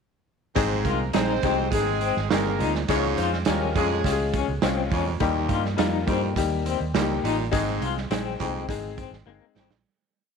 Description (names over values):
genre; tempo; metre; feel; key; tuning
uptempo 1960s-style soul; 104 BPM; 4/4; straight; Ab major; A4 = 440 Hz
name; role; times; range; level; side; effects
clear horn section; second line; 0.6-4.3 s; Ab3 to Db5; -30 LUFS; right 14 dB; none
clear grand piano; accompaniment; 0.6-9.7 s; G3 to Ab4; -27 LUFS; left 12 dB; none
bright baritone saxophone; riff; 0.6-9.8 s; Eb2 to Bb2; -32 LUFS; right 14 dB; none
vintage muted fingered electric bass; bass; 0.6-9.8 s; G1 to G2; -29 LUFS; right 1 dB; none
raw garage drum kit; drums; 0.6-9.8 s; hi-hat, kick drum, snare drum; -28 LUFS; right 6 dB; none
electric guitar through a small old amp; riff; 0.9-9.7 s; Bb3 to F4; -31 LUFS; left 13 dB; tremolo
room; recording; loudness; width
small room ambience; 1960s-style stereo with parts hard left and right; -22 LUFS; side -6 dB against mid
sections
0.6-9.8 A section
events
fade-out 7.5-9.8; drum fill 9.3-9.8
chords
0.6 Ab; 2.9 Db; 5.2 Eb; 7.5 Ab